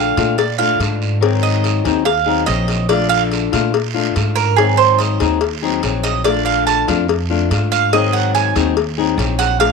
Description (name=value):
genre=latin, Cuban son and guajira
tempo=143 BPM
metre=4/4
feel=straight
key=unclear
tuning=A4 = 440 Hz
part: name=flamenco guitar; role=accompaniment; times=0.0-9.7 s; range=D3 to Ab4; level=-19 LUFS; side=left 13 dB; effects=none
part: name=Cuban tres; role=arpeggios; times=0.0-9.7 s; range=Ab4 to A5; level=-17 LUFS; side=right 11 dB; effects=none
part: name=upright bass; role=bass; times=0.0-9.7 s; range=Bb1 to Bb2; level=-20 LUFS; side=right 1 dB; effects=none
part: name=cowbell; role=percussion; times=0.2-9.7 s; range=none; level=-21 LUFS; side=left 12 dB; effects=none
part: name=guiro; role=percussion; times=0.2-9.7 s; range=none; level=-27 LUFS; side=right 14 dB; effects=none
room=light reverb, studio ambience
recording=1960s-style stereo with parts hard left and right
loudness=-14 LUFS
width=side -4 dB against mid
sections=0.0-9.7 A section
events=Cuban tres solo 0.0-9.7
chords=0.0 Bbmaj7; 1.2 Ab7; 2.9 Bbmaj7; 4.6 Ab7; 6.3 Bbmaj7; 7.9 Ab7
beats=0.38 0.80 | 1.22 1.64 2.06 2.48 | 2.90 3.32 3.74 4.16 | 4.58 5.00 5.42 5.84 | 6.25 6.67 7.09 7.51 | 7.93 8.35 8.77 9.19 | 9.60